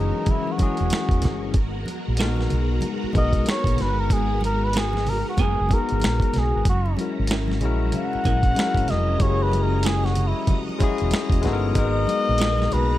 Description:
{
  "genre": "R&B, neo-soul",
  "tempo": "94 BPM",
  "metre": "4/4",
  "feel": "swing 61% on 16ths",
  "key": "G# minor",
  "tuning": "A4 = 436 Hz",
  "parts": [
    { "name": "trumpet with cup mute", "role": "melody", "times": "0.0-13.0 s", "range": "D#4 to F#5", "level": "-26 LUFS", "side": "equal", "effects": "none" },
    { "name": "barky tine electric piano", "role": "accompaniment", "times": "0.0-13.0 s", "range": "E3 to A#4", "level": "-27 LUFS", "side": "left 6 dB", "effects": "overdrive" },
    { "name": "string machine, violins", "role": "sustained chords", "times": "0.0-13.0 s", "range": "E3 to A#5", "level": "-32 LUFS", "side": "equal", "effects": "ensemble chorus" },
    { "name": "fingered electric bass", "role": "bass", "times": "0.0-13.0 s", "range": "E1 to B1", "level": "-23 LUFS", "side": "right 1 dB", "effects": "none" },
    { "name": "dusty soul sampler-style drum kit", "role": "drums", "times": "0.3-12.9 s", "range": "finger snaps, hi-hat, kick drum, snare drum", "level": "-23 LUFS", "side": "right 1 dB", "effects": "none" },
    { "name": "congas", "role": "percussion", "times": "0.3-12.9 s", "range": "none", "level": "-34 LUFS", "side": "right 2 dB", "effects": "none" },
    { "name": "electric guitar through a small old amp", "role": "second line", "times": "2.2-12.6 s", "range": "B3 to A#4", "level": "-30 LUFS", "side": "right 4 dB", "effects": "tremolo, slapback echo" }
  ],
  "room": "little or no reverb",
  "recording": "none",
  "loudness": "-19 LUFS",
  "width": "side -14 dB against mid",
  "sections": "0.0-13.0 A section",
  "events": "muted trumpet solo 0.0-13.0",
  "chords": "0.0 F#7; 1.5 G#m9; 6.7 F#7; 11.8 G#m9"
}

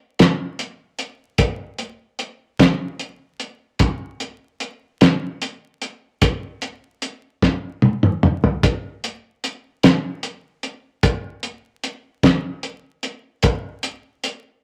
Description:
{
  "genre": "rock",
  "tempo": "50 BPM (dotted quarters)",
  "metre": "6/8",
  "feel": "straight",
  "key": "none",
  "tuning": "none",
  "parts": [
    { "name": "cloth-damped thuddy drum kit", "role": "drums", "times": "0.2-14.4 s", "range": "hi-hat, kick drum, snare drum, toms", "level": "-18 LUFS", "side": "equal", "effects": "none" }
  ],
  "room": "moderate club reverb, RT60 0.6 s",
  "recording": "vinyl crackle",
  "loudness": "-20 LUFS",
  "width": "mono",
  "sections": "0.0-14.6 A section",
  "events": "drum fill 7.4-8.6",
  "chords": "none"
}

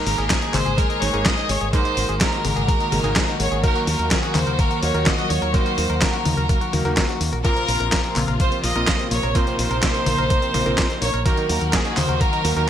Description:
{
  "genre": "italo disco",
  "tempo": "126 BPM",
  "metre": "4/4",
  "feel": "straight",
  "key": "unclear",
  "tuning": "A4 = 439 Hz",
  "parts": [
    { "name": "clear chamber violin section", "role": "melody", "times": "0.0-12.7 s", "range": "Ab4 to Eb5", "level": "-24 LUFS", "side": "right 1 dB", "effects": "digital delay" },
    { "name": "dark chamber string section", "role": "sustained chords", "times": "0.0-12.7 s", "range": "C3 to Ab4", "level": "-27 LUFS", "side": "left 1 dB", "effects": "none" },
    { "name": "direct-recorded clean electric guitar", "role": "arpeggios", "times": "0.0-12.6 s", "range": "Ab3 to Bb4", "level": "-32 LUFS", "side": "left 4 dB", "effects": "digital delay" },
    { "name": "clear electric grand piano", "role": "stabs", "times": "0.0-12.7 s", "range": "Ab2 to Bb4", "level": "-29 LUFS", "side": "right 4 dB", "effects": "none" },
    { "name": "fingered electric bass with an envelope filter", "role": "bass", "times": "0.1-12.7 s", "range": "Ab1 to Eb2", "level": "-24 LUFS", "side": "equal", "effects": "tube saturation" },
    { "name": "dusty soul sampler-style drum kit", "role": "drums", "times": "0.1-12.7 s", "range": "handclaps, hi-hat, snare drum, toms", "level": "-24 LUFS", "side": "left 1 dB", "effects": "studio reverb" },
    { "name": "electronic kick drum", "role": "drums", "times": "0.3-12.3 s", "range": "none", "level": "-22 LUFS", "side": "equal", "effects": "studio reverb" }
  ],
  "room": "light reverb",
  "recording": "bright 1980s-style digital production",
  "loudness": "-18 LUFS",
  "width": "side -10 dB against mid",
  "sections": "0.0-12.7 A section",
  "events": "none",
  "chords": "0.0 Absus2; 3.6 Ebm; 7.4 Bbsus2; 11.3 Ebm"
}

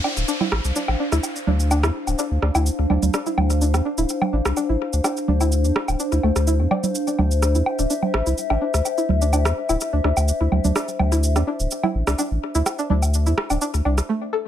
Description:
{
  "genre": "minimal techno",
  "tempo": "126 BPM",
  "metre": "4/4",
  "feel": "straight",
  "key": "D minor",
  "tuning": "A4 = 439 Hz",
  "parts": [
    { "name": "string-like resonator pluck", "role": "riff", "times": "0.0-14.4 s", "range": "A3 to D5", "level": "-26 LUFS", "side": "equal", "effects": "chorus, ping-pong delay" },
    { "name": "electronic woodblock, congas and rim click", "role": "percussion", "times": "0.0-14.1 s", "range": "none", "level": "-25 LUFS", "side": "right 3 dB", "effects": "ping-pong delay" },
    { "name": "downlifter", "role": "sound effects", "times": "0.0-3.1 s", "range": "none", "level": "-31 LUFS", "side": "equal", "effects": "none" },
    { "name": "warbly tape-like pad", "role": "texture", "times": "0.0-14.1 s", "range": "D4 to F5", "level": "-26 LUFS", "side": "left 2 dB", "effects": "chorus, built-in reverb" },
    { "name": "saturated sub bass", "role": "bass", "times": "0.2-14.0 s", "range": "D1 to F2", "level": "-20 LUFS", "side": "equal", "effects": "tube saturation" },
    { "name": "cabasa", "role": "drums", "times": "0.2-14.1 s", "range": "none", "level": "-31 LUFS", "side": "right 2 dB", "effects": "overdrive" }
  ],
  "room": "moderate studio reverb, RT60 0.6 s",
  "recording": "none",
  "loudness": "-18 LUFS",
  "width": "side -10 dB against mid",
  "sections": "0.0-14.5 A section",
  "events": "break 14.1-14.5",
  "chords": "0.0 Dm7"
}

